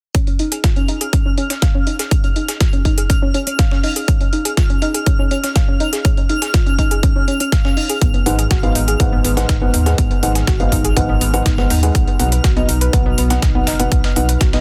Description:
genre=progressive house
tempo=122 BPM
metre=4/4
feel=straight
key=Db mixolydian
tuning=A4 = 440 Hz
part: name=soft round pluck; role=arpeggios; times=0.1-14.6 s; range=Cb4 to F5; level=-25 LUFS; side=equal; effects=analog chorus, cassette tape, sidechain pumping, delay
part: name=dusty soul sampler-style drum kit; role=drums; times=0.1-14.6 s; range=hi-hat, snare drum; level=-30 LUFS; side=equal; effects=sidechain pumping on hats, high-pass filter on hats, high-pass filter on snare
part: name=electronic hi-hat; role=drums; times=0.1-14.5 s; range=none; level=-25 LUFS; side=equal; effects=sidechain pumping on hats
part: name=electronic kick drum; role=drums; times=0.1-14.5 s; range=none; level=-18 LUFS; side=equal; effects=none
part: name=twinkling granular texture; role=texture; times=0.5-14.6 s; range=F6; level=-30 LUFS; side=equal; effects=built-in reverb, sidechain pumping
part: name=saturated sub bass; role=bass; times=8.0-14.6 s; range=Gb1 to Eb2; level=-21 LUFS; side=equal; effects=sidechain pumping
part: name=felt-muted upright piano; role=stabs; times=8.3-14.6 s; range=Ab2 to Gb5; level=-23 LUFS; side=equal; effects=sidechain pumping, delay
room=little or no reverb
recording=dense, heavily limited modern master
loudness=-16 LUFS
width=mono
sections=0.1-14.6 A section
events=filter sweep on synth pluck 0.1-14.6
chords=0.1 Dbadd9; 8.0 Abm7; 11.9 Cb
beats=| 0.15 0.64 1.13 1.62 | 2.11 2.61 3.10 3.59 | 4.08 4.57 5.07 5.56 | 6.05 6.54 7.03 7.52 | 8.02 8.51 9.00 9.49 | 9.98 10.47 10.97 11.46 | 11.95 12.44 12.93 13.43 | 13.92 14.41

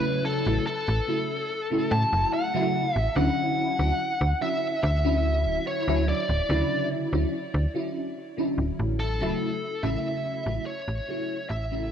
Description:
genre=vaporwave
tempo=72 BPM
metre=4/4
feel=straight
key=A major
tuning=A4 = 438 Hz
part: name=biting lead guitar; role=melody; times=0.0-11.9 s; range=A4 to A5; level=-28 LUFS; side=equal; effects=overdrive, vintage 12-bit sampler grit, tape echo
part: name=FM electric piano with soft pad layer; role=accompaniment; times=0.0-11.9 s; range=C#3 to E4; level=-28 LUFS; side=equal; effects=phaser, ensemble chorus, analog delay
part: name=slap-like FM bass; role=bass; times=0.5-11.9 s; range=D1 to A2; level=-25 LUFS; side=equal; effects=tube saturation
room=light reverb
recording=cassette tape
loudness=-24 LUFS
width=side -8 dB against mid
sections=0.0-11.9 A section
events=fade-out 7.6-11.9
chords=0.0 A6; 3.2 Dmaj9; 9.4 A6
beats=0.66 1.50 2.33 | 3.16 4.00 4.83 5.66 | 6.50 7.33 8.16 9.00 | 9.83 10.66 11.50

